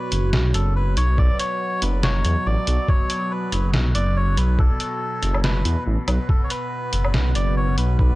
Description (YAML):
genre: deep dubstep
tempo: 141 BPM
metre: 4/4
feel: swing 56% on 16ths, half-time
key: B minor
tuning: A4 = 440 Hz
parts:
  - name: melodica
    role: melody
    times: 0.0-8.2 s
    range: A4 to D5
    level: -27 LUFS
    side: left 1 dB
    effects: dub echo
  - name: overtone-sweeping drone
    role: sustained chords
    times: 0.0-8.2 s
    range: B2 to B3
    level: -29 LUFS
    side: equal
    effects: chorus, built-in reverb
  - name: dark detuned saw bass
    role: bass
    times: 0.1-8.1 s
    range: F#1 to E2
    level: -20 LUFS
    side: equal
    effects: none
  - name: trip hop sampler-style drum kit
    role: drums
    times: 0.1-7.9 s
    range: hi-hat, snare drum, woodblock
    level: -24 LUFS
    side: equal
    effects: none
  - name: electronic kick drum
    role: drums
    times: 1.2-8.1 s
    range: none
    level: -18 LUFS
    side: equal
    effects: none
room: digital ambience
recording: dry, gritty hardware recording, transformer saturation, cassette tape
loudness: -18 LUFS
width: side -19 dB against mid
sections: 0.0-8.2 A section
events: none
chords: 0.0 B5